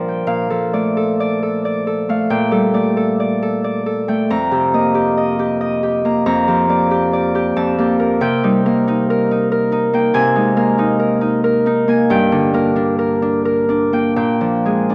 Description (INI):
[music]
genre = classical, solo harp piece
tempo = 91 BPM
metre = 3/4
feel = uneven beats, rubato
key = Bb major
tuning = A4 = 440 Hz
[part]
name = Celtic harp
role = solo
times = 0.0-14.9 s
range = F2 to Bb5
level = -16 LUFS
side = equal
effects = none
[sound]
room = moderate scoring stage reverb, RT60 1.7 s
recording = close, detailed microphones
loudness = -17 LUFS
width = mono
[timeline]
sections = 0.3-14.9 A section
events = none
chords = 0.3 Bbmaj7; 2.3 Gmadd9/Bb; 4.3 F11; 6.3 Bb6/F; 7.6 Gm9/F; 8.2 Cm7; 10.2 Bb11/C; 12.1 Gm; 14.2 Bb6